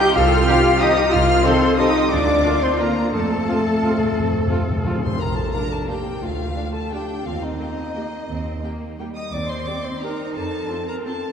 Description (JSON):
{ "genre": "classical, orchestral ballroom waltz", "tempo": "176 BPM", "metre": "3/4", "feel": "uneven beats, rubato", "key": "Bb major", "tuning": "A4 = 440 Hz", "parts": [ { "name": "warm studio violin section", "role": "melody", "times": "0.0-11.2 s", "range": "F5 to G6", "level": "-27 LUFS", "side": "left 2 dB", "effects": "none" }, { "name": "dark clarinet", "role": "second line", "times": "0.0-11.3 s", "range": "Eb4 to G5", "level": "-26 LUFS", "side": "left 2 dB", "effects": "none" }, { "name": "silver concert flute", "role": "second line", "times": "0.0-4.8 s", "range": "A4 to G5", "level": "-26 LUFS", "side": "left 2 dB", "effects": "none" }, { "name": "rich studio viola section", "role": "accompaniment", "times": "0.0-11.1 s", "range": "A3 to Bb4", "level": "-26 LUFS", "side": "right 1 dB", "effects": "none" }, { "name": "mellow French horn section", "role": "sustained chords", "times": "0.0-4.8 s", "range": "A3 to G4", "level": "-23 LUFS", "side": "left 2 dB", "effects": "none" }, { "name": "warm studio cello section", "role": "bass", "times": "0.0-11.3 s", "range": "G3 to A4", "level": "-27 LUFS", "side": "right 1 dB", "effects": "none" }, { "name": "rich studio double bass section", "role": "bass", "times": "0.2-10.6 s", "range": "Bb1 to F2", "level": "-26 LUFS", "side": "right 2 dB", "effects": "none" }, { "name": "rich studio violin section", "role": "second line", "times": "0.5-11.3 s", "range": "C4 to Eb6", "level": "-32 LUFS", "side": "left 3 dB", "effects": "none" }, { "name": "warm trombone section", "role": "sustained chords", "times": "0.5-5.0 s", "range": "C3 to C4", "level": "-30 LUFS", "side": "right 1 dB", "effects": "none" }, { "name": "mellow trumpet", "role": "stabs", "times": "0.5-5.0 s", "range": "F4 to A4", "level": "-29 LUFS", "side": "right 1 dB", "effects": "none" }, { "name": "timpani", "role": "percussion", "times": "3.1-5.1 s", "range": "F2", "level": "-27 LUFS", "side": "left 1 dB", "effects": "none" } ], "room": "wet church reverb, RT60 3.2 s", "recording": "dark, warm production", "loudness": "-18 LUFS", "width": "side -7 dB against mid", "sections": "0.0-5.2 A section; 5.2-11.3 B section", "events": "timpani fill 3.1-5.2", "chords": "0.0 Cm; 2.1 Bb/D; 3.1 F; 5.2 Bb; 6.2 Dm; 7.3 Eb; 9.3 Cm/Eb; 10.4 F", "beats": "| 0.16 0.48 0.82 | 1.14 1.46 1.80 | 2.12 2.45 2.80 | 3.14 3.48 3.83 | 4.17 4.51 4.86 | 5.20 5.54 5.89 | 6.22 6.56 6.92 | 7.26 7.60 7.96 | 8.30 8.64 8.99 | 9.33 9.67 10.03 | 10.36 10.70 11.05" }